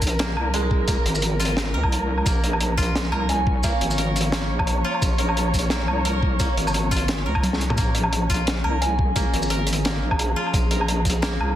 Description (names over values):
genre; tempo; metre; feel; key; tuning
half-time drum and bass; 174 BPM; 4/4; swing 55% on 16ths, half-time; Bb minor; A4 = 440 Hz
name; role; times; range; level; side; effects
muted studio cello section; sustained chords; 0.0-11.6 s; F3 to Db5; -28 LUFS; left 1 dB; sidechain pumping
koto; arpeggios; 0.0-11.6 s; Ab3 to Bb4; -30 LUFS; right 2 dB; dub echo
deep soft wobble bass; bass; 0.0-11.6 s; Ab1 to Eb2; -24 LUFS; equal; chorus, tube saturation
crunchy breakbeat drum kit; drums; 0.0-11.5 s; hi-hat, shaker, snare drum, toms, woodblock; -25 LUFS; equal; none
electronic kick drum; drums; 0.0-11.1 s; none; -24 LUFS; equal; none
soft synth bell; melody; 3.3-4.1, 8.8-9.3 s; F5 to Ab5; -31 LUFS; right 2 dB; chorus, dub echo
room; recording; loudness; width
light reverb, studio ambience; dense, heavily limited modern master; -19 LUFS; side -12 dB against mid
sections
0.0-11.6 A section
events
drum fill 7.4-7.8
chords
0.0 Bbm